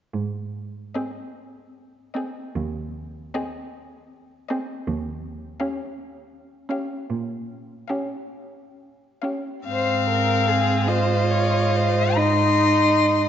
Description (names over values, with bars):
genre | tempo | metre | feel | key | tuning
classical, slow romantic movement for string quartet | 42-55 BPM (dotted quarters) | 12/8 | rubato | Ab major | A4 = 438 Hz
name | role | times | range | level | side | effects
rich cello | bass | 0.1-13.3 s | Eb2 to Bb2 | -26 LUFS | right 3 dB | none
rich violin | melody | 0.9-13.3 s | Eb5 to C6 | -25 LUFS | left 8 dB | none
rich violin | second line | 1.0-13.3 s | G4 to Eb5 | -27 LUFS | left 2 dB | none
warm viola | accompaniment | 1.0-13.3 s | C4 to F4 | -26 LUFS | right 2 dB | none
room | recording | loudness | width
wet concert hall reverb, RT60 2.4 s | nothing above 7.6 kHz | -21 LUFS | side -9 dB against mid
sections
0.1-9.7 A section; 9.7-13.3 B section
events
none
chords
0.1 Ab; 4.9 Eb9; 9.7 Ab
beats
| 0.12 1.35 2.55 3.73 | 4.87 5.97 7.10 8.32 | 9.67 10.87 12.17